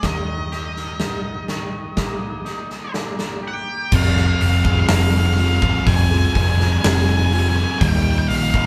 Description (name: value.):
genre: post-rock.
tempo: 62 BPM.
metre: 4/4.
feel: straight.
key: F minor.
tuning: A4 = 445 Hz.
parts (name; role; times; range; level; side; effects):
octave-fuzz lead guitar; melody; 0.0-8.6 s; Eb5 to Ab5; -27 LUFS; equal; distortion.
twangy electric guitar; arpeggios; 0.0-3.9 s; Eb3 to G4; -35 LUFS; equal; none.
hollow-body short-scale picked electric bass; bass; 0.0-8.7 s; F1 to Eb2; -22 LUFS; equal; none.
big rock drum kit; drums; 0.0-8.7 s; crash cymbal, hi-hat, kick drum, snare drum; -24 LUFS; equal; none.
thick fuzz guitar; riff; 3.9-8.7 s; Eb3 to Ab4; -24 LUFS; equal; distortion.
room: moderate stone room reverb, RT60 1.2 s.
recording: band playing live in one room.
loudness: -19 LUFS.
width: mono.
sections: 0.0-3.9 A section; 3.9-8.7 B section.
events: none.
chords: 0.0 Eb; 3.9 Fm; 7.8 Eb.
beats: | 0.03 1.01 1.98 2.95 | 3.92 4.90 5.87 6.84 | 7.81.